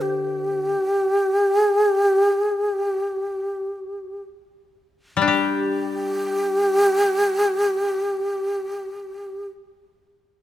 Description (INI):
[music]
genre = japanese traditional, Japanese chamber music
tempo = free time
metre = none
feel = none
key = unclear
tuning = A4 = 440 Hz
[part]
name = breathy long shakuhachi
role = melody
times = 0.0-9.5 s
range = G4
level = -20 LUFS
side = equal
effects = none
[part]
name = koto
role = accompaniment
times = 0.0-9.5 s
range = D3 to G4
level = -24 LUFS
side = left 5 dB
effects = none
[sound]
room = light reverb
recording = close, detailed microphones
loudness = -19 LUFS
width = side -13 dB against mid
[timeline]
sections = 0.0-5.3 A section; 5.3-9.7 B section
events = slowing down 0.0-5.3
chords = none